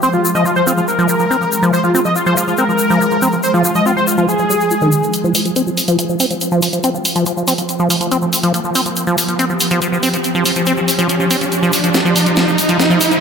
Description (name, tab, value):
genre	psychedelic trance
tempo	141 BPM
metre	4/4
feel	straight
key	F minor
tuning	A4 = 440 Hz
part	wide unison lead	melody	0.0-5.1 s	F4 to Eb5	-16 LUFS	equal	phaser, tape echo
part	swarming drone	sustained chords	0.0-13.2 s	F3 to G4	-19 LUFS	equal	built-in reverb
part	liquid acid bass	riff	0.0-13.2 s	Eb3 to F4	-17 LUFS	equal	chorus, auto-pan, digital delay
part	egg shaker	percussion	0.0-13.2 s	none	-23 LUFS	left 4 dB	none
part	techno drum kit	drums	5.1-13.2 s	hi-hat, snare drum	-19 LUFS	right 1 dB	none
part	riser	sound effects	7.0-13.2 s	none	-21 LUFS	right 2 dB	none
room	moderate lush hall reverb, RT60 1.9 s, digital ambience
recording	none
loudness	-12 LUFS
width	side -6 dB against mid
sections	0.0-5.1 A section; 5.1-13.2 B section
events	filter sweep on acid bass 0.0-5.1, 5.1-13.2; build-up 5.1-13.2; riser 7.0-13.2; drum fill 11.9-13.2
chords	0.0 F5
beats	| 0.03 0.46 0.88 1.31 | 1.73 2.16 2.58 3.01 | 3.43 3.86 4.29 4.71 | 5.14 5.56 5.99 6.41 | 6.84 7.26 7.69 8.12 | 8.54 8.97 9.39 9.82 | 10.24 10.67 11.09 11.52 | 11.95 12.37 12.80